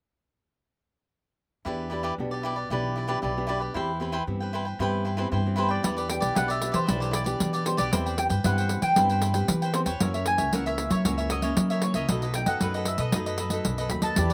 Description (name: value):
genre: samba and choro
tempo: 115 BPM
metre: 4/4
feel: straight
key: E minor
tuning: A4 = 440 Hz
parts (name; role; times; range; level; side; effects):
- cavaquinho; accompaniment; 1.6-14.3 s; D#4 to G5; -33 LUFS; equal; none
- nylon-string guitar; accompaniment; 1.7-14.3 s; F#2 to G4; -35 LUFS; equal; none
- upright bass; bass; 1.7-14.3 s; B1 to F#3; -32 LUFS; equal; none
- mandolin; melody; 5.6-14.3 s; C5 to B5; -31 LUFS; equal; slapback echo
- pandeiro; percussion; 5.8-14.3 s; none; -31 LUFS; equal; none
room: little or no reverb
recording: recorded outdoors, with no room sound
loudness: -26 LUFS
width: mono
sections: 1.7-5.8 A section; 5.8-14.3 B section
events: none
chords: 1.7 Em7; 3.7 Cmaj7/E; 5.8 Em7; 7.9 Cmaj7/E; 10.0 F#7; 12.1 B7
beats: | 1.65 2.18 2.70 3.23 | 3.75 4.27 4.79 5.32 | 5.84 6.36 6.88 7.41 | 7.93 8.45 8.97 9.49 | 10.01 10.53 11.05 11.57 | 12.09 12.61 13.13 13.65 | 14.17